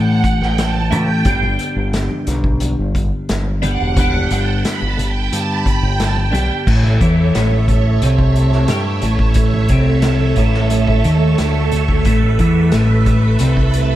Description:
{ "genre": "psychedelic rock", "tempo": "89 BPM", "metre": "4/4", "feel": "straight", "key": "A mixolydian", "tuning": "A4 = 440 Hz", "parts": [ { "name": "phased string machine", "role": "sustained chords", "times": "0.0-14.0 s", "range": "A3 to B5", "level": "-21 LUFS", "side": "right 5 dB", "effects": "ensemble chorus, phaser" }, { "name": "twelve-string electric guitar", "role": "riff", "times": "0.0-14.0 s", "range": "G2 to E4", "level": "-17 LUFS", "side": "left 1 dB", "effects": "rotary speaker" }, { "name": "growling fingered electric bass", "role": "bass", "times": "0.0-14.0 s", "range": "E1 to A2", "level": "-19 LUFS", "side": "equal", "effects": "overdrive" }, { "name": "vintage drum kit", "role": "drums", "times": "0.2-13.9 s", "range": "crash cymbal, hi-hat, kick drum, snare drum", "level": "-20 LUFS", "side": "equal", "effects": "none" }, { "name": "congas", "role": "percussion", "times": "0.9-13.6 s", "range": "none", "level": "-30 LUFS", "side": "left 2 dB", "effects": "none" } ], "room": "light reverb, studio reverb", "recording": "none", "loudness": "-13 LUFS", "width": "side -14 dB against mid", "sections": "0.0-6.7 A section; 6.7-14.0 B section", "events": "string machine solo 0.0-6.7", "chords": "0.0 A; 1.3 G; 6.7 A", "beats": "0.58 | 1.26 1.93 2.61 3.29 | 3.96 4.64 5.32 5.99 | 6.67 7.34 8.02 8.70 | 9.37 10.04 10.72 11.39 | 12.06 12.74 13.41" }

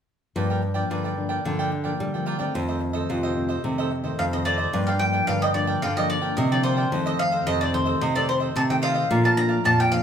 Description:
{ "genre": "samba", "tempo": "110 BPM", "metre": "4/4", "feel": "straight", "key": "G minor", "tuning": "A4 = 438 Hz", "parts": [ { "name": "cavaquinho", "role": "accompaniment", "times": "0.4-10.0 s", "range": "F4 to A5", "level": "-30 LUFS", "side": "right 3 dB", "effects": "none" }, { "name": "nylon-string guitar", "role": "accompaniment", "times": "0.4-10.0 s", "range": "F2 to D4", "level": "-29 LUFS", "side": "left 3 dB", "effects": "none" }, { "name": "nylon-string guitar", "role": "bass", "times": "0.4-10.0 s", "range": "F2 to G3", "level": "-25 LUFS", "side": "right 1 dB", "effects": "none" }, { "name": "bowl-back mandolin", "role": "melody", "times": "4.2-10.0 s", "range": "C5 to Bb5", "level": "-24 LUFS", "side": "equal", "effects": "none" } ], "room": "moderate large studio reverb, RT60 1.0 s", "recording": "band playing live in one room", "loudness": "-21 LUFS", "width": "side -8 dB against mid", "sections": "0.4-4.7 A section; 4.7-10.0 B section", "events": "none", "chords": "0.4 Gm7; 2.5 F7; 4.7 Gm7; 6.9 F7; 9.1 Bbmaj7", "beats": "| 0.36 0.91 1.46 2.00 | 2.55 3.10 3.64 4.19 | 4.74 5.28 5.83 6.38 | 6.92 7.47 8.01 8.56 | 9.10 9.65" }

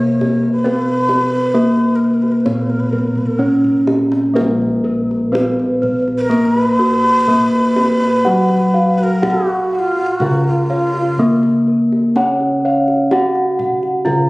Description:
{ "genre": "Javanese gamelan", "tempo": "63 BPM", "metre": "4/4", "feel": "uneven beats", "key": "Bb pelog", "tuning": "A4 = 440 Hz", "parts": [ { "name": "gamelan-type bronze metallophone", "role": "melody", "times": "0.0-14.3 s", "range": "Gb3 to Gb4", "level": "-15 LUFS", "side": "equal", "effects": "none" }, { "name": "breathy low xiao", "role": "second line", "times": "0.0-12.0 s", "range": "F4-21c to Db5-20c", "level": "-18 LUFS", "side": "equal", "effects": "none" }, { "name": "gamelan-type bossed gongs", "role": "arpeggios", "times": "0.0-14.3 s", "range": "Gb4 to Gb5", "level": "-22 LUFS", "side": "left 1 dB", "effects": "none" }, { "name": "gamelan-type bossed gongs", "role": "bass", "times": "0.0-14.3 s", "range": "Bb1 to Cb5+35c", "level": "-22 LUFS", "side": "equal", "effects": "none" }, { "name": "kendang", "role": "percussion", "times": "0.0-14.3 s", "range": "none", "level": "-26 LUFS", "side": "equal", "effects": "none" }, { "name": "gamelan-type bronze metallophone", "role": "arpeggios", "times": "4.4-14.3 s", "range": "Gb4 to Gb5", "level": "-25 LUFS", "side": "right 1 dB", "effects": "none" } ], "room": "moderate recital hall reverb, RT60 1.7 s", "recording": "recorded on a phone in the room, studio reverb", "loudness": "-13 LUFS", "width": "side -22 dB against mid", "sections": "0.0-4.4 A section; 4.4-14.3 B section", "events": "drum fill 3.2-4.4", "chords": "none", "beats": "| 0.65 1.54 2.45 3.39 | 4.35 5.33 6.30 7.28 | 8.26 9.23 10.21 11.18 | 12.16 13.12 14.06" }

